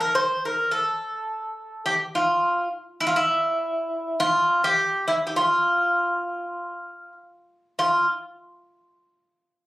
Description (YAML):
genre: fado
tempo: 103 BPM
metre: 4/4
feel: rubato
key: F major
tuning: A4 = 440 Hz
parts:
  - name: Greek bouzouki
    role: solo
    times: 0.0-8.1 s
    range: E4 to C5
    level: -21 LUFS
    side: equal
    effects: none
room: moderate studio reverb, RT60 0.5 s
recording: recorded on a phone in the room, club reverb, compression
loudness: -21 LUFS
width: side -18 dB against mid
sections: 0.0-7.8 A section; 7.8-9.7 B section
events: none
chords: none